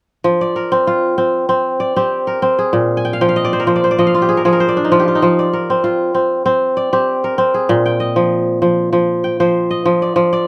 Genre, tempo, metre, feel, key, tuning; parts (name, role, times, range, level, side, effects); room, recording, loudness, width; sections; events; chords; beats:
west african traditional; 97 BPM; 4/4; straight; F dorian; A4 = 440 Hz
kora; arpeggios; 0.2-10.5 s; Bb2 to Ab5; -15 LUFS; equal
light reverb; close, detailed microphones; -15 LUFS; mono
0.2-10.5 A section
kora fill 3.0-5.2
0.2 F5; 2.7 Bb5; 5.2 F5; 7.7 Bb
| 0.24 0.86 1.49 2.11 | 2.73 3.35 3.97 4.59 | 5.21 5.83 6.45 7.07 | 7.69 8.31 8.93 9.54 | 10.16